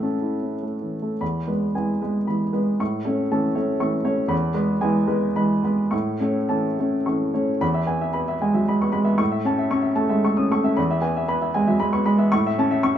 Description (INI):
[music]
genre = neoclassical minimalist piano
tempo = 102-121 BPM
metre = 3/4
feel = rubato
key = E major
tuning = A4 = 435 Hz
[part]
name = warm upright piano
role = solo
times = 0.0-13.0 s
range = E2 to D#6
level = -20 LUFS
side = equal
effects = none
[sound]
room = wet stone room reverb, RT60 1.3 s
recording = band playing live in one room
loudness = -20 LUFS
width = side -10 dB against mid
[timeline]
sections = 0.0-1.2 A section; 1.2-7.6 B section; 7.6-13.0 C section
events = none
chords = 0.0 A; 1.2 E; 2.8 A; 4.3 E; 5.9 A; 7.6 E; 9.2 A; 10.8 E; 12.3 A